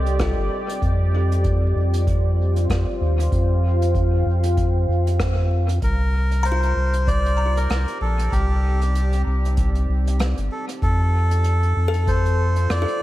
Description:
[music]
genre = ambient dub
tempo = 96 BPM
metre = 4/4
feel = swing 57% on 16ths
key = C dorian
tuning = A4 = 439 Hz
[part]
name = deep dark ambient pad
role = sustained chords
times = 0.0-13.0 s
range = C4 to G5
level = -28 LUFS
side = equal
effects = chorus, built-in reverb
[part]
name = kalimba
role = arpeggios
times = 0.0-1.6, 6.4-7.9, 11.9-13.0 s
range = F4 to Bb5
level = -31 LUFS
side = left 5 dB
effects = tape echo
[part]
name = warm sub bass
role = bass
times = 0.0-12.9 s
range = G1 to F2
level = -19 LUFS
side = equal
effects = none
[part]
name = vintage brush drum kit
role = drums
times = 0.1-13.0 s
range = hi-hat, rim click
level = -32 LUFS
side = right 1 dB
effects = dub echo
[part]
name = electronic kick drum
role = drums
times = 0.2-12.2 s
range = none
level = -25 LUFS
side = equal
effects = none
[part]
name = melodica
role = melody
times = 5.8-13.0 s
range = G4 to D5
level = -26 LUFS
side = equal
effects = dub echo
[sound]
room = studio ambience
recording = vinyl crackle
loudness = -18 LUFS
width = side -15 dB against mid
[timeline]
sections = 0.0-5.8 A section; 5.8-13.0 A section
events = band accent 5.2-5.5; fade-in on ambient pad 5.8-13.0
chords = 0.0 Cmadd9; 0.8 Fsus2; 5.8 Cm9; 10.8 F9

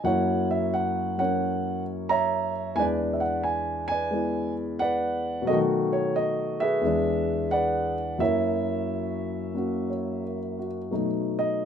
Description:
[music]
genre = solo jazz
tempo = 88 BPM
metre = 4/4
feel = swing 66% on 8ths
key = unclear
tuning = A4 = 440 Hz
[part]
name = dark grand piano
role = solo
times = 0.0-11.7 s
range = E2 to A#5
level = -24 LUFS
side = equal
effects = none
[sound]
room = light reverb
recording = minimal, uncompressed stereo recording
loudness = -24 LUFS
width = side -8 dB against mid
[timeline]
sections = 0.0-10.9 A section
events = none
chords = 0.1 F#7; 2.8 E7; 5.5 B7; 6.8 E7; 8.2 F#7; 10.9 B7

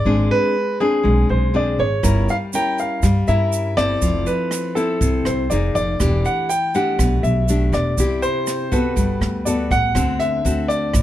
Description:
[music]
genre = bossa nova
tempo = 121 BPM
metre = 4/4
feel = straight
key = unclear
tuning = A4 = 440 Hz
[part]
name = warm concert grand piano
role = melody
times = 0.0-11.0 s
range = G#4 to G5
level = -21 LUFS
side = equal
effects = none
[part]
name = nylon-string guitar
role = accompaniment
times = 0.0-11.0 s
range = A2 to Bb4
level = -22 LUFS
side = left 3 dB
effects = none
[part]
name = upright bass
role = bass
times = 0.0-11.0 s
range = E1 to G2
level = -20 LUFS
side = equal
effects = none
[part]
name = jazz brush drum kit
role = drums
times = 2.0-11.0 s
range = hi-hat, kick drum, rim click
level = -24 LUFS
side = right 1 dB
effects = none
[part]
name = tube shaker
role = percussion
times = 2.0-11.0 s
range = none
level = -32 LUFS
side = right 9 dB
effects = none
[sound]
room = light reverb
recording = none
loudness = -16 LUFS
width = side -13 dB against mid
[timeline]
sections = 0.0-10.0 A section; 10.0-11.0 B section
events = none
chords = 0.0 E7b13/G# (rootless); 2.0 C7b9/G; 4.0 Fmaj7; 5.5 Fm7; 6.0 Em11; 8.0 Cmaj7; 9.0 Gmaj9; 10.0 D7

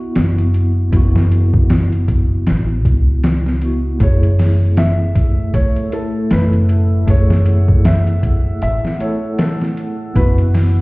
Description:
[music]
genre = trip hop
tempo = 78 BPM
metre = 4/4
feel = swing 58% on 16ths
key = F# minor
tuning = A4 = 440 Hz
[part]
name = tine electric piano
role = accompaniment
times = 0.0-10.8 s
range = A3 to A4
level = -23 LUFS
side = equal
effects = medium tremolo, tape echo
[part]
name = upright bass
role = bass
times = 0.2-10.8 s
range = F#1 to C#2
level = -14 LUFS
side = equal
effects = none
[part]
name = trip hop sampler-style drum kit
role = drums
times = 0.2-10.8 s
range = hi-hat, kick drum, snare drum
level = -16 LUFS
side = equal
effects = overdrive, studio ambience
[part]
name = felt-muted upright piano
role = melody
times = 4.0-10.8 s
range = A4 to E5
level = -25 LUFS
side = right 1 dB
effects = tape echo
[part]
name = deep dark ambient pad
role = sustained chords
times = 5.0-10.8 s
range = A3 to E6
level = -27 LUFS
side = right 1 dB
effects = chorus, built-in reverb
[sound]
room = little or no reverb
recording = heard muffled through a wall, stone room reverb, EQ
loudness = -12 LUFS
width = side -23 dB against mid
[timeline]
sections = 0.0-10.8 A section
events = none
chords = 0.0 Esus2/F#; 4.0 F#m7; 10.2 Esus2/F#

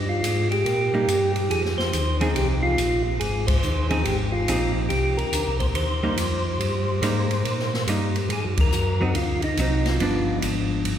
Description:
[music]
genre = soul jazz organ trio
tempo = 141 BPM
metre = 4/4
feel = swing 65% on 8ths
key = C minor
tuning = A4 = 440 Hz
[part]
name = tonewheel organ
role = bass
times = 0.0-11.0 s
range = G1 to Bb2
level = -25 LUFS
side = equal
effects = slow rotary speaker
[part]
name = percussive tonewheel organ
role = melody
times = 0.1-10.4 s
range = Eb4 to C5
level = -25 LUFS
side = equal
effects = slow rotary speaker
[part]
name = open jazz drum kit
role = drums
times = 0.2-11.0 s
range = hi-hat, kick drum, ride cymbal, snare drum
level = -28 LUFS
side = equal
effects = none
[part]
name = hollow-body jazz guitar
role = accompaniment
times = 0.9-11.0 s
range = F3 to Ab4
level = -28 LUFS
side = right 1 dB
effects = none
[sound]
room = wet church reverb, RT60 3.0 s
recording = recorded in a church or concert hall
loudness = -20 LUFS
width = side -10 dB against mid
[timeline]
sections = 0.0-11.0 A section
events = band accent 3.4, 8.5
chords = 0.0 C7(no3) (rootless); 1.5 Fm7; 4.9 Cm7; 8.3 Ab7; 10.0 G7

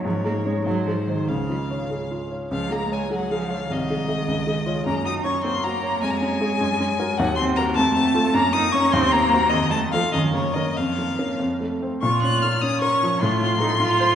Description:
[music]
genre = quick classical-period movement for piano trio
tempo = 101 BPM (dotted quarters)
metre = 6/8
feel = rubato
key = Db major, Bb minor from 7.2 s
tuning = A4 = 440 Hz
[part]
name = rich violin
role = melody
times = 0.0-14.2 s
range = C5 to Gb6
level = -24 LUFS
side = left 4 dB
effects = none
[part]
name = warm cello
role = second line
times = 0.0-14.2 s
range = Db3 to F4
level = -25 LUFS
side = right 3 dB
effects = none
[part]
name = warm grand piano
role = accompaniment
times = 0.0-14.2 s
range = C2 to Eb5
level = -23 LUFS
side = equal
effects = none
[sound]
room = wet concert hall reverb, RT60 2.2 s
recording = recorded in a church or concert hall, nothing above 10.3 kHz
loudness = -20 LUFS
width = side -9 dB against mid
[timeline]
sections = 0.0-2.5 A section; 2.5-12.0 A section; 12.0-14.2 B section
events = none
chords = 0.0 Db5/Ab; 0.7 Ab; 1.3 Db; 3.7 Ab/C; 4.3 Db; 4.9 Gb; 6.0 Db/F; 6.6 Gb; 7.2 Cm7b5/Eb; 7.8 F; 8.3 Gb; 8.9 Cm7b5/Eb; 9.5 F; 10.1 Gb; 10.8 Bbm/F; 11.4 F; 12.0 Bbm; 13.2 F/A

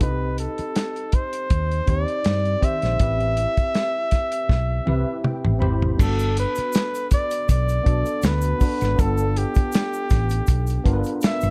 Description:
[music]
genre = lush 1970s-style soul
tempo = 80 BPM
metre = 4/4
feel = swing 54% on 16ths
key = G major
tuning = A4 = 440 Hz
[part]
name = warm flugelhorn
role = melody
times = 0.0-11.5 s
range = G4 to E5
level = -28 LUFS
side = equal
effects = none
[part]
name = tine electric piano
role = accompaniment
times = 0.0-11.5 s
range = Eb3 to B5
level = -31 LUFS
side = equal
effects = ensemble chorus
[part]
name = hollow-body short-scale fingered electric bass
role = bass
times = 0.0-11.5 s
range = G1 to G2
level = -25 LUFS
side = equal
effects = none
[part]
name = warm soul drum kit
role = drums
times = 0.0-11.5 s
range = crash cymbal, hi-hat, kick drum, snare drum, toms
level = -23 LUFS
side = equal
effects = none
[part]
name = egg shaker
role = percussion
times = 6.0-11.5 s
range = none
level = -43 LUFS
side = equal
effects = none
[sound]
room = small room ambience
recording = dark, warm production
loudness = -22 LUFS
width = mono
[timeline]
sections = 0.0-6.0 A section; 6.0-11.5 B section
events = drum fill 4.5-6.0; tine electric piano fill 4.5-6.0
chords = 0.0 Cm; 3.0 Am7; 6.0 Gmaj7; 9.0 G7

